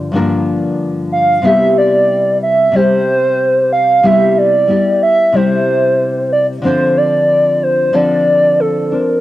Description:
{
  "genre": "indie pop",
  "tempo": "92 BPM",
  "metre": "4/4",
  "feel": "straight",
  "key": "C major",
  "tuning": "A4 = 440 Hz",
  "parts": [
    { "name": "nylon-string guitar", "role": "accompaniment", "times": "0.0-9.2 s", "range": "G2 to Bb4", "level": "-16 LUFS", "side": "left 2 dB", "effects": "lush chorus, warbly pitch drift, cassette tape" },
    { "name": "hollow clarinet-like synth lead", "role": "melody", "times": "1.1-9.2 s", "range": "A4 to F5", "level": "-11 LUFS", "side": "right 1 dB", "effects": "wide subtle chorus, cassette tape" }
  ],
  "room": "light reverb",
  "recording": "home recording on cassette",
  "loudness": "-10 LUFS",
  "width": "side -15 dB against mid",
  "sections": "0.0-9.2 A section",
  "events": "none",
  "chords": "0.0 Gm7; 1.4 Cmaj7; 6.6 Dm7"
}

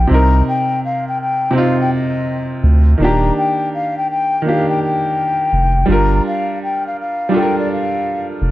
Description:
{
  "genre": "lo-fi hip hop",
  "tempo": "83 BPM",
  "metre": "4/4",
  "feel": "swing 64% on 16ths",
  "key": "G minor",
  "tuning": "A4 = 440 Hz",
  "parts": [
    { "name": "mellow hollow concert flute", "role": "melody", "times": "0.0-8.3 s", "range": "D5 to Bb5", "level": "-19 LUFS", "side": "left 2 dB", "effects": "low-pass filter" },
    { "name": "clear upright piano", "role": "accompaniment", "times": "0.0-8.5 s", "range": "C3 to Bb4", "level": "-18 LUFS", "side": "right 1 dB", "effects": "cassette tape, low-pass filter" },
    { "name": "saturated sub bass", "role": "bass", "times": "0.0-8.5 s", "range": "Eb1 to D2", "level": "-12 LUFS", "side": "equal", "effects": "none" }
  ],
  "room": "moderate studio reverb, RT60 0.6 s",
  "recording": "cassette tape",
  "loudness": "-14 LUFS",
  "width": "side -15 dB against mid",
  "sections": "0.0-8.5 A section",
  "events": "none",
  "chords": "0.1 Cm7; 3.0 Ebmaj7; 5.9 Gm7"
}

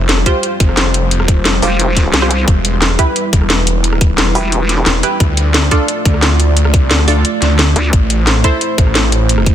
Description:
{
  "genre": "dark technical drum and bass",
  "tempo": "176 BPM",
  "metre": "4/4",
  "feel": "straight",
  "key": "E phrygian",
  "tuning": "A4 = 440 Hz",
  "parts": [
    { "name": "dark analog pad", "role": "sustained chords", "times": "0.0-9.5 s", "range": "G3 to D5", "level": "-20 LUFS", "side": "equal", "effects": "chorus, sidechain pumping" },
    { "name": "snarling distorted saw bass", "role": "bass", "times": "0.0-9.5 s", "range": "E1 to D2", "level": "-14 LUFS", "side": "equal", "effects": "distortion, overdrive" },
    { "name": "drum and bass drum kit", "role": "drums", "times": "0.1-9.5 s", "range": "hi-hat, rim click, snare drum", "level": "-15 LUFS", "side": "equal", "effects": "none" },
    { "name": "filtered dub chord stab", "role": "stabs", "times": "0.3-9.5 s", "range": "D4 to C5", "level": "-20 LUFS", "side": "right 2 dB", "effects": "analog chorus, ping-pong delay" },
    { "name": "electronic kick drum", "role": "drums", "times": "0.3-9.5 s", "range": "none", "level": "-12 LUFS", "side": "equal", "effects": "none" },
    { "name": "vowel-sweep wobble bass", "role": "bass", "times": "1.6-4.8, 7.8-7.9 s", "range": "E1 to D2", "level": "-14 LUFS", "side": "equal", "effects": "chorus" }
  ],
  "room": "light reverb, digital ambience",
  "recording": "dense, heavily limited modern master",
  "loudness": "-10 LUFS",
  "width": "side -10 dB against mid",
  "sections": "0.0-9.5 A section",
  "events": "none",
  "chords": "0.0 Fsus2; 2.5 Em; 5.2 Dm; 7.9 Am"
}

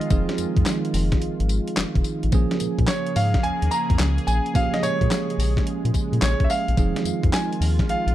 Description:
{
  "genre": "R&B, new jack swing",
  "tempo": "108 BPM",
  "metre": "4/4",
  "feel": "swing 66% on 16ths",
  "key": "Bb minor",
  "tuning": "A4 = 440 Hz",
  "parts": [
    { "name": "bright concert grand piano", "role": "melody", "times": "0.0-8.1 s", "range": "Db5 to Bb5", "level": "-27 LUFS", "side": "equal", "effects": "ping-pong delay" },
    { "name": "bell-like tine electric piano", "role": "accompaniment", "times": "0.0-8.1 s", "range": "F3 to Ab4", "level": "-28 LUFS", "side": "right 6 dB", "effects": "none" },
    { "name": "sweeping resonant pad", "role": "sustained chords", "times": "0.0-8.1 s", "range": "Db3 to Ab4", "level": "-29 LUFS", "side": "right 1 dB", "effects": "chorus" },
    { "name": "crisp 8-bit digital drum machine", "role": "drums", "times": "0.0-8.1 s", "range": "handclaps, hi-hat, kick drum, snare drum, tambourine", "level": "-23 LUFS", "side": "left 1 dB", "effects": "none" },
    { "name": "round analog bass", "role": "bass", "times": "0.1-8.1 s", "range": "F1 to Bb2", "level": "-23 LUFS", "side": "left 1 dB", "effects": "none" }
  ],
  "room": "little or no reverb",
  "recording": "dark, warm production",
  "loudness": "-19 LUFS",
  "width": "side -13 dB against mid",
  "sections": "0.0-8.1 A section",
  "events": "none",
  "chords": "0.0 Fm7; 2.3 Bbm7; 6.8 Fm7"
}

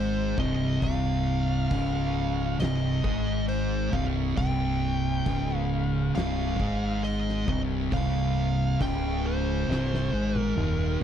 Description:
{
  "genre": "stoner and doom metal",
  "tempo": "68 BPM",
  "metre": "4/4",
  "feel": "straight",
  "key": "C minor",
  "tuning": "A4 = 441 Hz",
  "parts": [
    { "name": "fuzz lead guitar", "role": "melody", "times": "0.0-11.0 s", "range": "C5 to G5", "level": "-34 LUFS", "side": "right 1 dB", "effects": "distortion, slapback echo" },
    { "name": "thick fuzz guitar", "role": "riff", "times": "0.0-11.0 s", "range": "C2 to Ab3", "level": "-30 LUFS", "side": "left 10 dB", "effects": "distortion" },
    { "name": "thick fuzz guitar", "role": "riff", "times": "0.0-11.0 s", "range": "C2 to Ab3", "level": "-30 LUFS", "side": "right 7 dB", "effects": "distortion" },
    { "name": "growling fingered electric bass", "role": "bass", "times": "0.0-11.0 s", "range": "C1 to Ab1", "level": "-30 LUFS", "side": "equal", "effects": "overdrive" },
    { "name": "oversized low-tuned drum kit", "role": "drums", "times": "0.4-11.0 s", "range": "hi-hat, kick drum, snare drum, toms", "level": "-32 LUFS", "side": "equal", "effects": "none" }
  ],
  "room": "small room reverb",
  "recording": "dry, close 1970s-style studio recording",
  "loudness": "-24 LUFS",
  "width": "side -9 dB against mid",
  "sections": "0.0-11.0 A section",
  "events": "drum fill 9.7-11.0",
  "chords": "0.0 Cm"
}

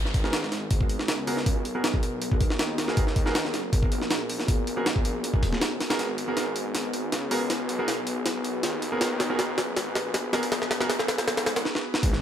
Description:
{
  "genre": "drum and bass, jungle",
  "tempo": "159 BPM",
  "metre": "4/4",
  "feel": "straight",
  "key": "G# minor",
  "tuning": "A4 = 441 Hz",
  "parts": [
    { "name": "airy breathy pad", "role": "sustained chords", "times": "0.0-12.2 s", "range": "B3 to B4", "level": "-32 LUFS", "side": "left 2 dB", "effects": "chorus" },
    { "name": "detuned saw bass", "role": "bass", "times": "0.0-12.2 s", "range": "D#1 to D#2", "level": "-34 LUFS", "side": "equal", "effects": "tube saturation, high-pass filter" },
    { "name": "jungle sampler-style drum kit", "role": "drums", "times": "0.1-12.2 s", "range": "hi-hat, kick drum, snare drum", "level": "-26 LUFS", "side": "equal", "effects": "small room ambience" },
    { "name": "clear concert grand piano", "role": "stabs", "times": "0.2-10.9 s", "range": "B3 to A#4", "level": "-33 LUFS", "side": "right 1 dB", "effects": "low-pass filter, dub echo" },
    { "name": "sub drop", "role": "sound effects", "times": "12.0-12.2 s", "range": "none", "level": "-39 LUFS", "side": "equal", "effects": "none" }
  ],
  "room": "light reverb",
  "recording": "none",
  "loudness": "-24 LUFS",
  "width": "side -10 dB against mid",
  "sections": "0.0-12.0 A section",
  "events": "build-up 0.0-12.0; filter sweep on analog synth pad 0.0-12.0; drum fill 6.0-11.7, 11.7-12.0; impact 12.0",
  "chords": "0.0 G#m9"
}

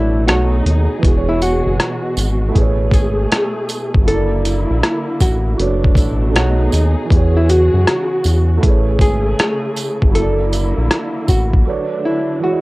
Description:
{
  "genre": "lo-fi hip hop",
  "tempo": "79 BPM",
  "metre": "4/4",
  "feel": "swing 65% on 16ths",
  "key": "E major",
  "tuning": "A4 = 440 Hz",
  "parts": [
    { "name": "archtop guitar, miked and amplified", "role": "melody", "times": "0.0-12.6 s", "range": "E4 to A4", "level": "-20 LUFS", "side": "left 1 dB", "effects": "low-pass filter, cassette tape" },
    { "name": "felt-muted upright piano", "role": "accompaniment", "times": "0.0-12.6 s", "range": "B2 to D#5", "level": "-23 LUFS", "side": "right 5 dB", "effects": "low-pass filter, cassette tape" },
    { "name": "warm studio string section", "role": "sustained chords", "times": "0.0-12.6 s", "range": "B2 to G#4", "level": "-22 LUFS", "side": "left 1 dB", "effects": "low-pass filter, cassette tape" },
    { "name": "round analog bass", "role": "bass", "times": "0.0-11.6 s", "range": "E1 to F#2", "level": "-16 LUFS", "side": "equal", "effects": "none" },
    { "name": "boom bap sampler-style drum kit", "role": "drums", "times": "0.3-11.7 s", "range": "hi-hat, kick drum, rim click", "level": "-15 LUFS", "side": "equal", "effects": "vintage 12-bit sampler grit" },
    { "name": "tambourine", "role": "percussion", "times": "1.4-11.5 s", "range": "none", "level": "-30 LUFS", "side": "right 6 dB", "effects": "none" }
  ],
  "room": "little or no reverb",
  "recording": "home recording on cassette",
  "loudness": "-13 LUFS",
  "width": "side -21 dB against mid",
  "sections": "0.0-12.6 A section",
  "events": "break 0.0-1.0, 11.7-12.6",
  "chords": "0.3 B13; 1.0 E69; 2.5 Amaj7; 4.1 F#7alt; 5.6 Bm9/F#; 6.3 B13; 7.1 E69; 8.6 Amaj7; 10.1 F#7alt; 11.7 Bm9"
}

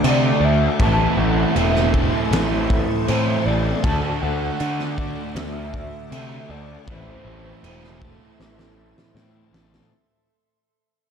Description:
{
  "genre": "rock, shoegaze and dream pop",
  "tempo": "79 BPM",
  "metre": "4/4",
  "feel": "straight",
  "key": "unclear",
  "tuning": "A4 = 440 Hz",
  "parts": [
    { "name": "evolving wavetable pad", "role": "sustained chords", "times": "0.0-9.9 s", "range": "A4 to D6", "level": "-35 LUFS", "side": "right 3 dB", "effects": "chorus, built-in reverb" },
    { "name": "twelve-string electric guitar", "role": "arpeggios", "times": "0.0-9.9 s", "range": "E3 to F#4", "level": "-31 LUFS", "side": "left 2 dB", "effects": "wide subtle chorus, digital delay" },
    { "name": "crunchy overdriven guitar", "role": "riff", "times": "0.0-9.9 s", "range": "A2 to A4", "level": "-27 LUFS", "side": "left 12 dB", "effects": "lush chorus" },
    { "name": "overdriven electric guitar", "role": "riff", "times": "0.0-9.9 s", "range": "A2 to F#4", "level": "-25 LUFS", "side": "right 11 dB", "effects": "reverse reverb" },
    { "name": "fuzz picked electric bass", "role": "bass", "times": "0.0-9.8 s", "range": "E1 to D3", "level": "-23 LUFS", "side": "equal", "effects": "overdrive" },
    { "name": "loose indie drum kit", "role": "drums", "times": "0.0-9.9 s", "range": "crash cymbal, kick drum, snare drum", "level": "-25 LUFS", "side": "equal", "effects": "none" },
    { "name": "warm velvety synth lead", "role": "melody", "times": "0.1-9.1 s", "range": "C5 to A5", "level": "-27 LUFS", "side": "left 2 dB", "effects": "chorus, digital delay" }
  ],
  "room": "studio ambience",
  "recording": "dark, warm production",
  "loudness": "-17 LUFS",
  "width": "side -7 dB against mid",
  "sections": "0.0-9.9 A section",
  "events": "fade-out 0.0-9.9; drum fill 8.4-9.9",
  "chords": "0.0 D; 0.8 Am; 3.8 D; 6.9 Am"
}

